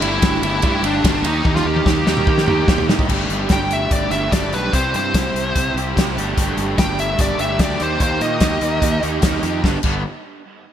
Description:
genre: indie rock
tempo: 146 BPM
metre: 4/4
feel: straight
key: unclear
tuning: A4 = 440 Hz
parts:
  - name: bluesy overdriven lead guitar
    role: melody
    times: 0.0-9.0 s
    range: D4 to G5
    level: -22 LUFS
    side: left 1 dB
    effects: distortion
  - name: cranked stack guitar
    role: riff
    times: 0.0-10.0 s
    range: G2 to G4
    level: -26 LUFS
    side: left 7 dB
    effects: overdrive, wide subtle chorus
  - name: crunchy overdriven guitar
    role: riff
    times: 0.0-10.0 s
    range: G2 to G4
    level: -23 LUFS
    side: right 7 dB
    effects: ensemble chorus, digital delay
  - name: fuzz fingered electric bass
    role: bass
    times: 0.0-10.0 s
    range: G1 to Eb3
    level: -24 LUFS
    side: equal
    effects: overdrive
  - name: loose indie drum kit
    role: drums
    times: 0.0-9.9 s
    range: crash cymbal, hi-hat, kick drum, ride cymbal, snare drum, toms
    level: -19 LUFS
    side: equal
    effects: gated reverb
room: light reverb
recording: bright 1980s-style digital production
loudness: -15 LUFS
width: side -10 dB against mid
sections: 0.0-3.1 A section; 3.1-9.6 B section; 9.6-10.7 C section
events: drum fill 1.4-3.1; lead electric guitar solo 3.1-9.6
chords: 0.0 Gsus2; 1.2 Eb; 3.1 Gsus2; 4.7 C; 6.2 Gsus2; 7.8 Eb; 9.6 G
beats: 0.22 0.63 1.04 | 1.45 1.86 2.27 2.68 | 3.09 3.50 3.91 4.32 | 4.73 5.14 5.55 5.96 | 6.37 6.78 7.19 7.59 | 8.00 8.41 8.82 9.23 | 9.63

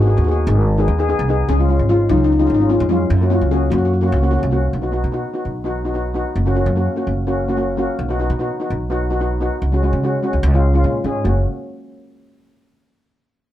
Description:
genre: calypso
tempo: 147 BPM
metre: 4/4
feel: straight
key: F# major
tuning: A4 = 436 Hz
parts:
  - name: steel pan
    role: melody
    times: 0.0-4.5 s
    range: F#3 to G#4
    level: -19 LUFS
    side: left 2 dB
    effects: none
  - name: steel pan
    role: accompaniment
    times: 0.0-11.4 s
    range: G#3 to G#4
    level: -21 LUFS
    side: left 1 dB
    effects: none
  - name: upright bass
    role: bass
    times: 0.0-11.4 s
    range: F#1 to C#3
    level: -18 LUFS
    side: equal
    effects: none
room: light reverb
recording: dark, warm production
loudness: -15 LUFS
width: side -12 dB against mid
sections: 0.0-4.7 A section; 4.7-11.3 B section; 11.3-12.9 C section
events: none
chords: 0.0 G#m; 1.5 C#; 3.1 F#; 4.7 B; 6.4 F#; 8.0 B; 9.6 C#sus4; 10.4 C#; 11.3 F#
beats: 0.27 0.68 1.08 | 1.49 1.89 2.30 2.70 | 3.11 3.51 3.92 4.33 | 4.73 5.14 5.55 5.95 | 6.36 6.77 7.18 7.58 | 7.99 8.40 8.81 9.21 | 9.62 10.03 10.44 10.85 | 11.25

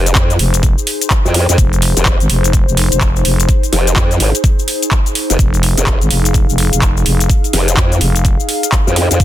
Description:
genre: bass house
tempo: 126 BPM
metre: 4/4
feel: swing 61% on 16ths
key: F minor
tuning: A4 = 440 Hz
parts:
  - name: formant-sweep wobble bass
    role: bass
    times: 0.0-9.2 s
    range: F1 to F2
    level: -13 LUFS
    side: equal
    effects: chorus, overdrive, sidechain pumping
  - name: warbly tape-like pad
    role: texture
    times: 0.0-9.2 s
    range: Eb4 to F5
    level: -21 LUFS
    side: left 2 dB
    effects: chorus, built-in reverb, sidechain pumping
  - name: garage drum kit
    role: drums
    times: 0.1-9.2 s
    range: handclaps, hi-hat, shaker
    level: -17 LUFS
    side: left 1 dB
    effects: none
  - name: electronic kick drum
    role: drums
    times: 0.2-9.2 s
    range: none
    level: -13 LUFS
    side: equal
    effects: none
  - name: growling FM bass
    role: bass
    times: 0.4-9.2 s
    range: F1 to Ab1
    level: -14 LUFS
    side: equal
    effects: tube saturation, sidechain pumping
room: little or no reverb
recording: dense, heavily limited modern master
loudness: -10 LUFS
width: side -13 dB against mid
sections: 0.0-9.2 A section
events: none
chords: 0.0 Fm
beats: 0.15 0.63 1.11 | 1.58 2.06 2.53 3.01 | 3.49 3.96 4.44 4.92 | 5.39 5.87 6.34 6.82 | 7.30 7.77 8.25 8.72 | 9.20

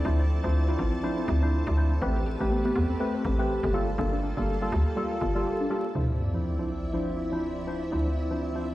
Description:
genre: deep house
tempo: 122 BPM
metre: 4/4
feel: swing 58% on 16ths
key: D minor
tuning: A4 = 436 Hz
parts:
  - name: warm analog pad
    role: sustained chords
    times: 0.0-8.7 s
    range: F3 to D5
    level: -35 LUFS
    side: equal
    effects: chorus
  - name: percussive organ stab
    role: stabs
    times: 0.0-8.7 s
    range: F3 to C5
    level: -30 LUFS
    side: equal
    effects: analog chorus, tape echo
  - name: hollow knocking FM bass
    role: bass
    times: 0.0-8.7 s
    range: G1 to E2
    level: -27 LUFS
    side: equal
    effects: tube saturation
  - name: string machine, violins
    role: texture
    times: 0.0-8.7 s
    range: E4 to A5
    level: -40 LUFS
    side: equal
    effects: ensemble chorus
  - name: soft round pluck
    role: arpeggios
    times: 0.2-5.9 s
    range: B3 to F5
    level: -35 LUFS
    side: left 1 dB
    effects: wide subtle chorus, tape echo
  - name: sub drop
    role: sound effects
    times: 6.0-7.9 s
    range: none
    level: -32 LUFS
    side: equal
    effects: none
room: light reverb, digital ambience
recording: played on a big sound system in a bare room, large studio reverb, vinyl crackle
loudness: -25 LUFS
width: side -16 dB against mid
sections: 0.0-6.0 A section; 6.0-8.7 B section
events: impact 6.0-7.9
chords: 0.0 Dm9; 2.0 Am9; 3.7 Gm9; 6.0 Dm9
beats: | 0.05 0.54 1.03 1.52 | 2.02 2.51 3.00 3.49 | 3.98 4.48 4.97 5.46 | 5.95 6.44 6.93 7.43 | 7.92 8.41

